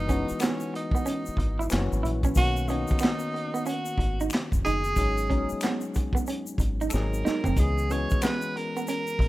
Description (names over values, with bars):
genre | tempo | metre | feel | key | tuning
R&B, neo-soul | 92 BPM | 4/4 | swing 63% on 16ths | C# dorian | A4 = 438 Hz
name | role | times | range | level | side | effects
breathy tenor saxophone | melody | 0.0-9.3 s | C#4 to C#5 | -31 LUFS | right 2 dB | none
barky tine electric piano | accompaniment | 0.0-9.3 s | D#3 to G#4 | -32 LUFS | left 3 dB | none
deep dub fingered electric bass | bass | 0.0-9.3 s | F#1 to C#2 | -28 LUFS | equal | none
electric guitar through a small old amp | second line | 0.1-9.2 s | B3 to E4 | -32 LUFS | right 4 dB | none
crunchy breakbeat drum kit | drums | 0.1-9.3 s | handclaps, hi-hat, kick drum, snare drum, toms | -27 LUFS | equal | none
tube shaker and finger snaps | percussion | 0.1-9.2 s | none | -40 LUFS | left 5 dB | none
room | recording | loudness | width
small room reverb | rough home demo mix | -24 LUFS | side -17 dB against mid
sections
0.0-9.3 A section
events
drum fill 6.9-7.6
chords
0.0 F#13sus4; 1.7 F#7; 2.4 Bmaj9; 5.0 G#7sus4; 6.9 G#7; 7.6 C#m7